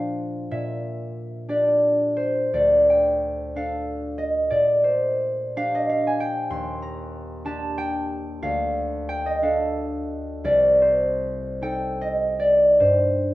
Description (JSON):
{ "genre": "classical, solo harp piece", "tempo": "48-67 BPM (dotted quarters)", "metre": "6/8", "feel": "rubato", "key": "Bb major", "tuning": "A4 = 441 Hz", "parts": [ { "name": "concert harp", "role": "solo", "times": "0.0-13.3 s", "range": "C2 to C6", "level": "-20 LUFS", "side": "equal", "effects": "none" } ], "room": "light reverb", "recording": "dark, warm production", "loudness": "-20 LUFS", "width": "side -16 dB against mid", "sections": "0.0-13.3 A section", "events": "none", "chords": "0.0 Bbadd9; 0.5 Cadd9/Bb; 2.5 Dm7; 4.5 Bb69; 6.5 Ebmaj7; 8.4 Dm; 10.4 Cm6; 12.8 Gsus4", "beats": "| 0.51 1.49 | 2.54 3.56 | 4.51 5.57 | 6.50 7.45 | 8.44 9.43 | 10.44 11.62 | 12.80" }